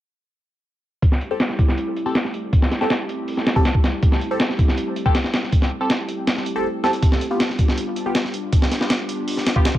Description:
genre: drum and bass, jungle.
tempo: 160 BPM.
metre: 4/4.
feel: straight.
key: A minor.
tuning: A4 = 441 Hz.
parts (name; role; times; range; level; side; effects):
warbly tape-like pad; sustained chords; 1.3-9.8 s; G3 to G4; -27 LUFS; equal; chorus, built-in reverb.
breakbeat sampler-style drum kit; drums; 1.0-9.8 s; hi-hat, kick drum, snare drum; -18 LUFS; equal; low-pass filter on hats, low-pass filter on kick, low-pass filter on snare.
band-passed chord stab; stabs; 1.3-9.7 s; B3 to A4; -26 LUFS; equal; phaser, dub echo.
room: light reverb, digital ambience.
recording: none.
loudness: -18 LUFS.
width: side -14 dB against mid.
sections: 1.0-9.8 A section.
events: filter sweep on drum 1.0-9.8.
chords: 1.0 Am7; 7.0 G7.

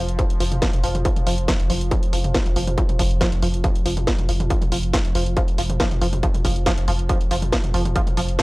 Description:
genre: driving peak-time techno.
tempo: 139 BPM.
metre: 4/4.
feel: straight.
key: unclear.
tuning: A4 = 442 Hz.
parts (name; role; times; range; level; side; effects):
tight sequenced synth; riff; 0.0-8.4 s; F3; -26 LUFS; right 1 dB; chorus, tube saturation, sidechain pumping, tape echo.
saturated sub bass; bass; 0.0-8.4 s; F1; -24 LUFS; equal; tube saturation, sidechain pumping, low-pass filter.
analog drone; drone; 0.0-8.4 s; F3; -31 LUFS; right 1 dB; chorus, sidechain pumping.
techno drum kit; drums; 0.1-8.4 s; hi-hat, snare drum, toms; -26 LUFS; equal; none.
electronic kick drum; drums; 0.2-8.4 s; none; -21 LUFS; equal; distortion.
room: digital ambience.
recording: dry, gritty hardware recording, cassette tape.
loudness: -18 LUFS.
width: side -21 dB against mid.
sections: 0.0-8.4 A section.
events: none.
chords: 0.0 F5.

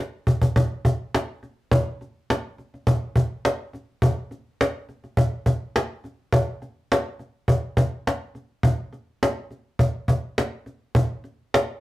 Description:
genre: rock.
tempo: 104 BPM.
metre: 4/4.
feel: straight.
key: none.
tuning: none.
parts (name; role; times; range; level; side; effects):
cajon; drums; 0.3-11.7 s; none; -20 LUFS; equal; none.
room: wet small room reverb, RT60 0.5 s.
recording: rough rehearsal-room recording, warm saturation.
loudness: -22 LUFS.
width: side -17 dB against mid.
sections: 0.6-11.8 A section.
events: drum fill 0.0-0.6.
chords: none.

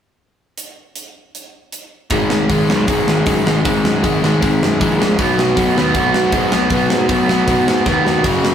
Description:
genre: punk rock.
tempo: 156 BPM.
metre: 4/4.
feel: straight.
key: B major.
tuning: A4 = 440 Hz.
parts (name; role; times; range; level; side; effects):
tight metal drum kit; drums; 0.6-8.5 s; crash cymbal, hi-hat, kick drum, snare drum; -20 LUFS; right 1 dB; none.
overdriven electric guitar; riff; 2.1-8.5 s; F#2 to B3; -17 LUFS; left 4 dB; none.
overdriven semi-hollow guitar; riff; 2.1-8.5 s; F#2 to B3; -19 LUFS; right 5 dB; none.
fuzz picked electric bass; bass; 2.1-8.5 s; F#1 to G#2; -20 LUFS; right 1 dB; overdrive.
room: light reverb.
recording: rough rehearsal-room recording, tube saturation.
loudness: -13 LUFS.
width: side -8 dB against mid.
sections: 0.6-2.1 A section; 2.1-8.5 B section.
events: drum fill 7.9-8.2.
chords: 0.6 N.C.; 2.1 G#5; 5.2 B.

